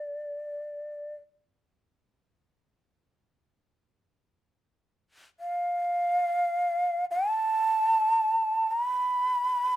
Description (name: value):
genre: japanese traditional, Japanese chamber music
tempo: free time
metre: none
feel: none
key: D kumoi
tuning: A4 = 443 Hz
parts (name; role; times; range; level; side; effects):
- breathy mellow shakuhachi; solo; 0.0-9.8 s; D5 to B5; -25 LUFS; right 1 dB; none
room: light reverb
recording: none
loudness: -24 LUFS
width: side -14 dB against mid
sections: 0.0-3.2 A section; 3.2-9.8 A section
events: none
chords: none